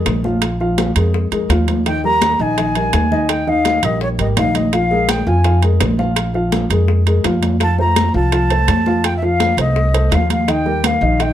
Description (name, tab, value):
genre	Afro-Cuban jazz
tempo	167 BPM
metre	4/4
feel	straight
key	unclear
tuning	A4 = 440 Hz
part	dark baby grand piano	accompaniment	0.0-11.3 s	Eb3 to F5	-20 LUFS	equal	none
part	upright bass	bass	0.0-11.3 s	Ab1 to F2	-18 LUFS	equal	none
part	bongos	percussion	0.1-11.3 s	none	-27 LUFS	left 6 dB	none
part	congas	percussion	0.1-11.3 s	none	-22 LUFS	equal	none
part	timbales	percussion	0.1-11.3 s	none	-23 LUFS	right 9 dB	none
part	mellow silver concert flute	melody	1.9-11.3 s	Db5 to Bb5	-19 LUFS	left 1 dB	none
room	light reverb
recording	none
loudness	-13 LUFS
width	side -11 dB against mid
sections	0.0-11.3 A section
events	none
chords	0.0 Bb7(no3); 1.9 Eb; 4.7 Bb5; 7.6 F7; 10.5 Eb